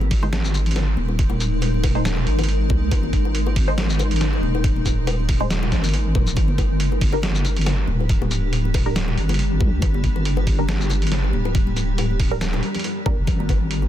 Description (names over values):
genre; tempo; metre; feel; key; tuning
deep dubstep; 139 BPM; 4/4; swing 55% on 16ths, half-time; G phrygian; A4 = 439 Hz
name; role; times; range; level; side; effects
granular cloud pad; sustained chords; 0.0-13.9 s; G3 to Bb4; -27 LUFS; left 1 dB; built-in reverb
deep soft wobble bass; bass; 0.0-13.9 s; D1 to C2; -21 LUFS; equal; chorus
congas and bongos; percussion; 0.0-13.9 s; none; -31 LUFS; left 6 dB; dub echo
electronic kick drum; drums; 0.1-13.6 s; none; -20 LUFS; equal; overdrive
trip hop sampler-style drum kit; drums; 0.1-13.8 s; hi-hat, shaker, snare drum; -28 LUFS; right 2 dB; none
filtered dub chord stab; stabs; 0.2-13.1 s; G3 to C5; -32 LUFS; right 1 dB; phaser, lush chorus, dub echo
room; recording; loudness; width
little or no reverb; dense, heavily limited modern master; -18 LUFS; side -12 dB against mid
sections
0.0-13.9 A section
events
none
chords
0.0 Ab5; 6.4 G5; 13.3 Ab5